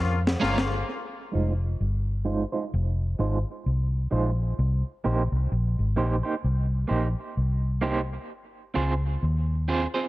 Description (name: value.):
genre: dub reggae.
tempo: 65 BPM.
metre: 4/4.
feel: swing 59% on 16ths.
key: F minor.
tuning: A4 = 440 Hz.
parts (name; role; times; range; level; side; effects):
mellow horn section; second line; 0.0-0.7 s; Bb3 to F4; -31 LUFS; left 5 dB; tape echo.
vintage muted fingered electric bass; bass; 0.0-9.9 s; F1 to F2; -24 LUFS; equal; none.
snare drum; drums; 0.3-0.8 s; none; -29 LUFS; left 1 dB; tape echo.
electric guitar at the edge of break-up; accompaniment; 0.4-10.0 s; Ab3 to C5; -30 LUFS; right 4 dB; tremolo, low-pass filter, tape echo.
room: light reverb, small room ambience.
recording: faint mains hum.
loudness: -24 LUFS.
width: side -18 dB against mid.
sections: 0.9-10.1 A section.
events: drum fill 0.0-0.9; band accent 0.0-0.9; filter sweep on clean electric guitar 0.9-10.1.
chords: 0.0 Bbm7; 0.9 Fm7; 4.6 Cm7; 8.3 Dbmaj7.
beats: | 0.88 1.80 2.73 3.65 | 4.58 5.50 6.43 7.36 | 8.28 9.21.